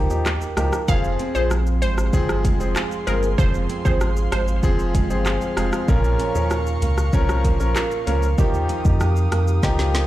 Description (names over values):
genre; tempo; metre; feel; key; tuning
dancehall; 96 BPM; 4/4; straight; F minor; A4 = 439 Hz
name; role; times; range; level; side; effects
bright concert grand piano; accompaniment; 0.0-10.1 s; F3 to Bb4; -26 LUFS; left 2 dB; none
flamenco guitar; arpeggios; 0.0-10.1 s; F2 to Ab4; -27 LUFS; right 5 dB; none
warm sub bass; bass; 0.0-10.1 s; F1 to F2; -21 LUFS; equal; none
afro-pop drum kit; drums; 0.1-10.1 s; handclaps, hi-hat, kick drum, rim click, shaker, snare drum; -22 LUFS; equal; none
glassy wavetable pluck; melody; 0.9-4.4 s; Bb4 to F5; -27 LUFS; equal; chorus, ping-pong delay
airy breathy pad; sustained chords; 0.9-10.1 s; G4 to Eb6; -32 LUFS; equal; chorus, sidechain pumping
room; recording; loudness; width
digital ambience; played on a big sound system in a bare room, large studio reverb; -18 LUFS; side -15 dB against mid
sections
0.0-10.1 A section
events
drum fill 9.6-10.1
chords
0.0 Ebadd9; 0.9 Fm; 5.9 Bbm; 8.4 Ebadd9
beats
0.26 | 0.88 1.51 2.13 2.76 | 3.38 4.01 4.63 5.26 | 5.88 6.51 7.13 7.76 | 8.38 9.01 9.63